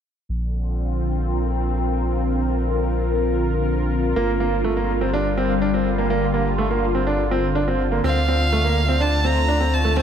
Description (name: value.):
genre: piano and strings electronica.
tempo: 124 BPM.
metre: 4/4.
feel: straight.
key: unclear.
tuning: A4 = 440 Hz.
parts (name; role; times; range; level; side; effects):
lush unison pad; sustained chords; 0.3-10.0 s; D3 to C5; -23 LUFS; left 1 dB; chorus, phaser.
warm sub bass; bass; 0.3-10.0 s; G1 to D2; -23 LUFS; equal; tube saturation.
bright concert grand piano; riff; 4.2-10.0 s; A3 to D4; -22 LUFS; right 2 dB; digital delay.
clear violin; melody; 8.1-10.0 s; F5 to Bb5; -22 LUFS; equal; none.
room: light reverb, studio reverb.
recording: none.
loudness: -18 LUFS.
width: side -8 dB against mid.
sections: 0.3-10.0 A section.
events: none.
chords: 0.3 Bbadd9; 4.2 Gm7; 8.0 Dm7.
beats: | 0.29 0.78 1.26 1.75 | 2.23 2.71 3.20 3.68 | 4.17 4.65 5.13 5.62 | 6.10 6.58 7.07 7.55 | 8.04 8.52 9.00 9.49 | 9.97.